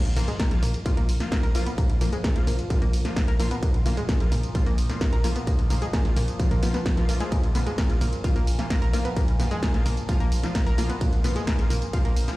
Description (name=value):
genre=driving peak-time techno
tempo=130 BPM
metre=4/4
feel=straight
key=unclear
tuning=A4 = 441 Hz
part: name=overtone-sweeping drone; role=drone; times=0.4-12.4 s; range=Bb2 to F3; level=-36 LUFS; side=equal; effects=chorus, built-in reverb, phaser, sidechain pumping
part: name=saturated sub bass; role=bass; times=0.1-12.3 s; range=Bb1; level=-26 LUFS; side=equal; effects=sidechain pumping, low-pass filter
part: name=punchy analog drum machine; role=drums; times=0.1-12.4 s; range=hi-hat, ride cymbal, snare drum, tambourine, toms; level=-32 LUFS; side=equal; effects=sidechain pumping on hats, sidechain pumping on perc, sidechain pumping on cymbals, sidechain pumping on toms
part: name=analog pluck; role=riff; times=0.2-12.1 s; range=Ab3 to Bb4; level=-32 LUFS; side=equal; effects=chorus, sidechain pumping, dub echo
part: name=rave stab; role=stabs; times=0.2-12.4 s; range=F3 to F4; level=-33 LUFS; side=left 2 dB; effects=chorus, built-in reverb, sidechain pumping, tape echo
part: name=electronic kick drum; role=drums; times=0.4-12.0 s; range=none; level=-24 LUFS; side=equal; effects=distortion
room=little or no reverb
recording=played on a big sound system in a bare room, large studio reverb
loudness=-21 LUFS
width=side -19 dB against mid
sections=0.0-12.4 A section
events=none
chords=0.0 Bb5